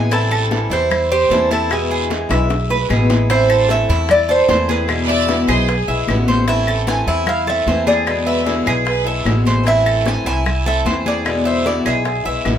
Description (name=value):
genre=latin, Cuban son and guajira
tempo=151 BPM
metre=4/4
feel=straight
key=A minor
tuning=A4 = 439 Hz
part: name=Cuban tres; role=melody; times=0.0-12.4 s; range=G#4 to G#5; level=-18 LUFS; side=right 1 dB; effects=none
part: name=picked swing-style acoustic guitar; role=accompaniment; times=0.0-12.6 s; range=B2 to E4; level=-22 LUFS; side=left 3 dB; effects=none
part: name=Cuban tres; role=arpeggios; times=0.0-12.6 s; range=E4 to E5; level=-22 LUFS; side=right 1 dB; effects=none
part: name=upright bass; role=bass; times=0.0-12.6 s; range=A1 to E2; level=-20 LUFS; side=right 1 dB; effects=none
part: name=bongos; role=percussion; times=0.1-12.6 s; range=none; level=-28 LUFS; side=left 4 dB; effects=none
part: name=congas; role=percussion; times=0.1-12.6 s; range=none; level=-26 LUFS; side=left 2 dB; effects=none
part: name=guiro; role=percussion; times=0.1-12.6 s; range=none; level=-30 LUFS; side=right 5 dB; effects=none
part: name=claves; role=percussion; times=0.3-12.6 s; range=none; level=-27 LUFS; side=left 4 dB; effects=none
part: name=clear studio violin section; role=second line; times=5.1-9.6 s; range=E4 to D5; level=-23 LUFS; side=right 2 dB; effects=none
room=light reverb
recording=minimal, uncompressed stereo recording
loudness=-14 LUFS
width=side -9 dB against mid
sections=0.0-3.3 A section; 3.3-12.6 B section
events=drum fill 2.3-3.3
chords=0.1 Am7; 1.7 E; 3.3 Am; 4.9 E7; 6.5 Am; 8.1 E7; 9.7 Am; 11.3 E7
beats=| 0.12 0.52 0.91 1.31 | 1.71 2.11 2.50 2.90 | 3.30 3.70 4.10 4.49 | 4.89 5.29 5.69 6.08 | 6.48 6.88 7.28 7.67 | 8.07 8.47 8.87 9.27 | 9.66 10.06 10.46 10.86 | 11.25 11.65 12.05 12.45